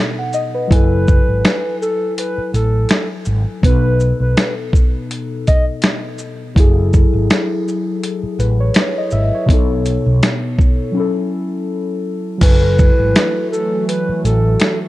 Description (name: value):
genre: lo-fi hip hop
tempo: 82 BPM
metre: 4/4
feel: swing 56% on 16ths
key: F# dorian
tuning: A4 = 440 Hz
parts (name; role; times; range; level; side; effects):
- muted felt-like synth keys; accompaniment; 0.0-14.9 s; B2 to G#5; -20 LUFS; left 2 dB; chorus
- dusty soul sampler-style drum kit; drums; 0.3-14.8 s; crash cymbal, finger snaps, hi-hat, kick drum, shaker, snare drum; -14 LUFS; equal; none
- hollow clarinet-like synth lead; melody; 0.7-5.7, 12.4-14.8 s; A4 to D#5; -20 LUFS; equal; chorus
- mellow fretless electric bass; bass; 0.7-14.5 s; F#1 to B1; -16 LUFS; equal; wide subtle chorus
- hollow soft pad; sustained chords; 13.1-14.9 s; E3 to F#4; -23 LUFS; right 2 dB; chorus
room: digital ambience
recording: cassette tape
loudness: -13 LUFS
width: side -17 dB against mid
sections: 0.0-12.4 A section; 12.4-14.9 A section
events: break 10.9-12.4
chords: 0.0 B7; 0.7 F#m9; 3.6 B7; 6.6 F#m9; 9.5 B7; 10.9 F#m7; 12.4 F#m9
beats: | 0.70 1.44 2.17 2.90 | 3.63 4.36 5.09 5.83 | 6.56 7.29 8.02 8.75 | 9.48 10.22 10.95 11.68 | 12.41 13.14 13.88 14.61